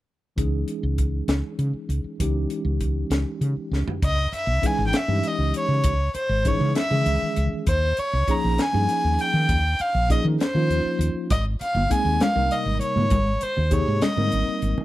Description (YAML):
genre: electric jazz fusion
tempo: 66 BPM (dotted quarters)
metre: 6/8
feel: straight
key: unclear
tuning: A4 = 441 Hz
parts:
  - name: bright tine electric piano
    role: accompaniment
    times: 0.4-14.8 s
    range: C3 to Bb4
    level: -28 LUFS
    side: equal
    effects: medium stereo tremolo
  - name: woody fretless electric bass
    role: bass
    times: 0.4-14.8 s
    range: G1 to Eb3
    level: -23 LUFS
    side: equal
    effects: none
  - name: crisp fusion drum kit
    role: drums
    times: 0.4-14.8 s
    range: hi-hat, kick drum, snare drum, toms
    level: -26 LUFS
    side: equal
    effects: none
  - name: warm violin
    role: melody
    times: 4.0-14.7 s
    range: C5 to Bb5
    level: -24 LUFS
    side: equal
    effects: none
  - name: congas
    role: percussion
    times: 11.3-14.8 s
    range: none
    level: -28 LUFS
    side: equal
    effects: none
room: studio ambience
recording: none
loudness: -20 LUFS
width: side -16 dB against mid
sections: 0.4-4.0 A section; 4.0-14.8 B section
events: drum fill 3.7-4.0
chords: 0.4 Dbmadd9; 7.7 Eb9sus4; 11.3 Abmaj7